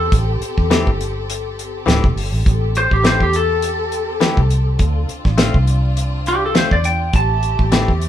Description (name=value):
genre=straight-eighth soul blues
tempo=102 BPM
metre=4/4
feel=swing 56% on 16ths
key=A minor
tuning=A4 = 438 Hz
part: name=lightly driven lead guitar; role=melody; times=0.0-8.1 s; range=G4 to A5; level=-19 LUFS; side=equal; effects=none
part: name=rich studio string section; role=sustained chords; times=0.0-8.1 s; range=A3 to A4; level=-26 LUFS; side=left 3 dB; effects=none
part: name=vintage muted fingered electric bass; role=bass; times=0.0-8.1 s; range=D1 to E2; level=-19 LUFS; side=equal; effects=none
part: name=damped 70s drum kit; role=drums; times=0.1-8.1 s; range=hi-hat, kick drum, snare drum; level=-17 LUFS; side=equal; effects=none
part: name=direct-recorded clean electric guitar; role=stabs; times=0.7-7.9 s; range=E3 to G4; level=-20 LUFS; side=left 4 dB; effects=none
room=moderate small room reverb, RT60 0.6 s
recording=band playing live in one room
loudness=-14 LUFS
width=side -11 dB against mid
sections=0.0-2.5 A section; 2.5-8.1 B section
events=lead electric guitar solo 0.0-2.5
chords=0.0 Am7; 4.8 Dm7; 7.1 Am7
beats=| 0.12 0.70 1.28 1.87 | 2.45 3.04 3.62 4.21 | 4.79 5.38 5.96 6.55 | 7.13 7.72